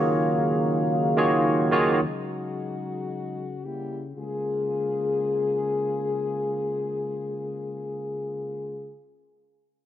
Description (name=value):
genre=amapiano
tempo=free time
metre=none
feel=none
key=Bb minor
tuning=A4 = 441 Hz
part: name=barky tine electric piano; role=accompaniment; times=0.0-2.0 s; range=Eb3 to Db5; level=-21 LUFS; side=right 2 dB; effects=analog chorus
part: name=dark brass ensemble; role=sustained chords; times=0.0-9.0 s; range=Db3 to F5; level=-27 LUFS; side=left 3 dB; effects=none
room=light reverb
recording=none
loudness=-24 LUFS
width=side -11 dB against mid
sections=0.0-4.2 A section; 4.2-8.5 B section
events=none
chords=0.0 Ebm11; 3.6 Edim7; 4.2 Bbm7